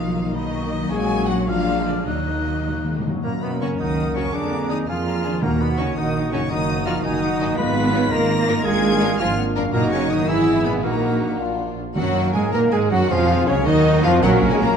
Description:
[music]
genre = classical, dramatic, fast romantic movement for symphony orchestra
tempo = 108 BPM (dotted quarters)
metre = 6/8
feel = straight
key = Eb minor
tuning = A4 = 440 Hz
[part]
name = rich chamber violin section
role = melody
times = 0.0-14.8 s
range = Db5 to Cb7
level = -29 LUFS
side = left 5 dB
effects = none
[part]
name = clear studio violin section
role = second line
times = 0.0-14.8 s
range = Bb3 to Bb4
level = -31 LUFS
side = left 4 dB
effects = none
[part]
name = silver concert flute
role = second line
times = 0.0-14.8 s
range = Db5 to Gb6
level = -32 LUFS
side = left 1 dB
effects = none
[part]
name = warm clarinet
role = second line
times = 0.0-11.4 s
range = D4 to Cb6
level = -31 LUFS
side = left 2 dB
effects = none
[part]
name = rich symphonic viola section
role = accompaniment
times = 0.0-14.8 s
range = Db3 to Cb5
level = -27 LUFS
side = right 1 dB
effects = none
[part]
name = dark French horn section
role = sustained chords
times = 0.0-14.8 s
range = Db3 to Gb4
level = -27 LUFS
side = left 3 dB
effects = none
[part]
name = concert harp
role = arpeggios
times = 0.0-14.8 s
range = F2 to Bb5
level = -29 LUFS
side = left 8 dB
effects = none
[part]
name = clear symphonic double bass section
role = bass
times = 0.0-14.7 s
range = Gb1 to Bb2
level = -25 LUFS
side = right 4 dB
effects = none
[part]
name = rich symphonic cello section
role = bass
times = 0.0-14.8 s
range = Bb2 to Cb4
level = -25 LUFS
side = right 3 dB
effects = none
[part]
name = timpani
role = percussion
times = 2.1-3.2, 5.4-5.9, 12.0-12.5 s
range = Eb3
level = -28 LUFS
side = equal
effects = none
[part]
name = warm cor anglais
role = second line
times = 3.2-14.8 s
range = Bb3 to Cb5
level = -31 LUFS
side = right 2 dB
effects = none
[part]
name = dark trumpet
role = stabs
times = 3.3-14.8 s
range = Db4 to Bb4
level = -27 LUFS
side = right 3 dB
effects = none
[part]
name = dark trombone section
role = sustained chords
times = 12.0-14.8 s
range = Bb2 to Bb3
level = -26 LUFS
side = right 1 dB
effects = none
[sound]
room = moderate scoring stage reverb, RT60 1.7 s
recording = dark, warm production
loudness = -18 LUFS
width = side -7 dB against mid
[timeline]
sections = 0.0-3.2 A section; 3.2-12.0 B section; 12.0-14.8 C section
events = timpani fill 2.1-3.2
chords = 0.0 Bmaj7; 0.9 Gb/Bb; 1.5 Bb7; 2.1 Ebm; 3.2 Gb; 4.3 Bb7/F; 5.4 Ebm; 6.5 Ebm/Gb; 7.6 Fm7b5/Ab; 8.7 Bb7/Ab; 9.7 Ebm/Gb; 10.3 E/G#; 10.8 Ebm/Bb; 11.4 Bb; 12.0 Ebm/Gb; 13.1 Bmaj7; 14.2 Gb/Bb

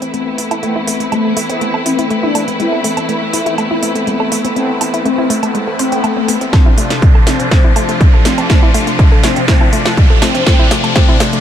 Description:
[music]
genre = melodic techno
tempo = 122 BPM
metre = 4/4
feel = straight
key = A minor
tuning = A4 = 439 Hz
[part]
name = clear symphonic string section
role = sustained chords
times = 0.0-11.4 s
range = E3 to B4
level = -22 LUFS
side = equal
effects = sidechain pumping, low-pass filter
[part]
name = woody wave-folded pluck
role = arpeggios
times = 0.0-11.4 s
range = G#3 to C5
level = -20 LUFS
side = equal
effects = chorus, sidechain pumping, ping-pong delay
[part]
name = analog synth brass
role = stabs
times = 0.0-11.4 s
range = C3 to D4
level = -20 LUFS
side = left 2 dB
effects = chorus, sidechain pumping, ping-pong delay
[part]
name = techno drum kit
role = drums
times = 0.0-11.4 s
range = hi-hat, snare drum, woodblock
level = -19 LUFS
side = right 2 dB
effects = none
[part]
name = riser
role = sound effects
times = 1.0-11.4 s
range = none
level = -22 LUFS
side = equal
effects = none
[part]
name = expressive synth lead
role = melody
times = 0.6-11.2 s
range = A3 to E4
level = -20 LUFS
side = left 2 dB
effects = ensemble chorus, vintage 12-bit sampler grit, sidechain pumping, ping-pong delay
[part]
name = electronic kick drum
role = drums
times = 6.5-11.1 s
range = none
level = -9 LUFS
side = equal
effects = none
[sound]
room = light reverb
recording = none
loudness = -10 LUFS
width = side -10 dB against mid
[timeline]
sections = 0.0-11.4 A section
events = build-up 0.0-11.4; filter sweep on synth pluck 0.0-11.4; filter sweep on analog synth lead 0.0-11.4; riser 1.0-11.4; drum fill 6.5-11.4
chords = 0.0 Amadd9; 6.5 Dm7

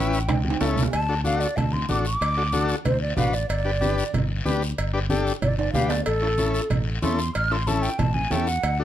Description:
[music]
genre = latin, cumbia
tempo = 187 BPM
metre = 4/4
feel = straight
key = D major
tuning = A4 = 440 Hz
[part]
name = breathy mellow silver concert flute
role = melody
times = 0.0-8.8 s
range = A4 to F6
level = -27 LUFS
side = equal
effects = plate reverb
[part]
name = combo organ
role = accompaniment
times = 0.0-8.8 s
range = C#4 to B4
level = -26 LUFS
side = left 3 dB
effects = none
[part]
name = fingered electric bass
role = bass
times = 0.0-8.8 s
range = G1 to E2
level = -26 LUFS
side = equal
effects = none
[part]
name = guiro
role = percussion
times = 0.1-8.8 s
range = none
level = -36 LUFS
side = left 6 dB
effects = none
[part]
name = congas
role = percussion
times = 0.3-8.5 s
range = none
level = -28 LUFS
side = right 2 dB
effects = none
[part]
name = cowbell and timbales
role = percussion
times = 0.3-8.8 s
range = none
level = -31 LUFS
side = right 6 dB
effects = none
[sound]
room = moderate studio ambience, RT60 0.5 s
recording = dark, warm production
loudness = -21 LUFS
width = side -11 dB against mid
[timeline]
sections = 0.9-8.8 A section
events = drum fill 0.3-0.9, 5.6-6.1; flute solo 0.9-8.8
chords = 0.0 A7; 0.9 D; 3.5 G; 6.1 A

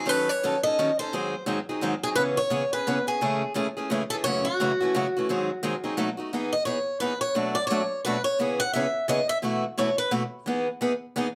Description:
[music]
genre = jazz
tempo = 174 BPM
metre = 3/4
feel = swing 61% on 8ths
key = C# minor, E major from 6.3 s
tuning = A4 = 439 Hz
[part]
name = picked swing-style acoustic guitar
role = melody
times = 0.0-10.1 s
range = F#4 to F#5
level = -28 LUFS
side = equal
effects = none
[part]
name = picked steel-string acoustic guitar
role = accompaniment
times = 0.0-11.3 s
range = F#2 to A4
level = -29 LUFS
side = equal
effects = none
[sound]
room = moderate club reverb, RT60 0.5 s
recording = none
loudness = -26 LUFS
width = mono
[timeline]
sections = 0.0-6.3 A section; 6.3-11.3 B section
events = steel-string acoustic guitar solo 6.3-11.3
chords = 0.1 D#m7b5; 1.1 G#7; 2.2 C#m7; 3.2 Amaj7; 4.2 F#m7; 5.3 G#7; 6.0 B7; 6.3 Emaj7; 7.3 Bm7; 8.4 C#m7; 9.4 B7sus4; 10.5 Emaj7

